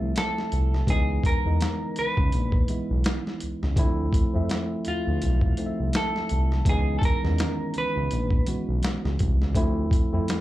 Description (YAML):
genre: R&B, neo-soul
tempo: 83 BPM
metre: 4/4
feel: swing 57% on 16ths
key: unclear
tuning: A4 = 440 Hz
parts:
  - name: semi-hollow electric guitar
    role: melody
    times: 0.0-9.2 s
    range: F4 to B4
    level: -30 LUFS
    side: right 1 dB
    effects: lush chorus, slapback echo, plate reverb
  - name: tine electric piano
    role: accompaniment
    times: 0.0-10.4 s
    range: D#3 to E5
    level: -29 LUFS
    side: equal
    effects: plate reverb, slapback echo
  - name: smooth gliding synth bass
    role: bass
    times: 0.0-10.3 s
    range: Bb1 to F2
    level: -25 LUFS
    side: equal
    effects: none
  - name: boom bap sampler-style drum kit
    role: drums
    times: 0.2-10.4 s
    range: hi-hat, kick drum, snare drum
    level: -25 LUFS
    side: equal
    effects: none
room: little or no reverb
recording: live gig heard through the venue's PA, club reverb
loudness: -22 LUFS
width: side -15 dB against mid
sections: 0.0-10.4 A section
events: none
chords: 0.0 Dm9 (rootless); 0.9 C#m9; 3.8 Dm9; 6.7 C#m9; 9.5 Dm9